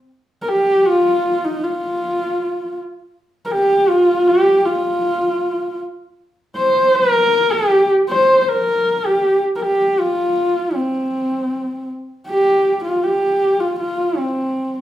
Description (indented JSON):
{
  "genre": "mongolian traditional",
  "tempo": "79 BPM",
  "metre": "4/4",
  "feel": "straight",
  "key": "unclear",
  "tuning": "A4 = 440 Hz",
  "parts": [
    { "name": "dark horsehead fiddle", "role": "solo", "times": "0.4-14.8 s", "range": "C4 to C5", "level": "-15 LUFS", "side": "equal", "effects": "none" }
  ],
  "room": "wet large studio reverb, RT60 0.8 s",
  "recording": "band playing live in one room",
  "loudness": "-15 LUFS",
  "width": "side -12 dB against mid",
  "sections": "0.1-12.3 A section; 12.3-14.8 B section",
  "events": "none",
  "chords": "none",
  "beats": "| 0.09 0.85 1.62 2.38 | 3.14 3.90 4.67 5.43 | 6.19 6.95 7.71 8.46 | 9.22 9.98 10.74 11.49 | 12.25 13.01 13.77 14.53"
}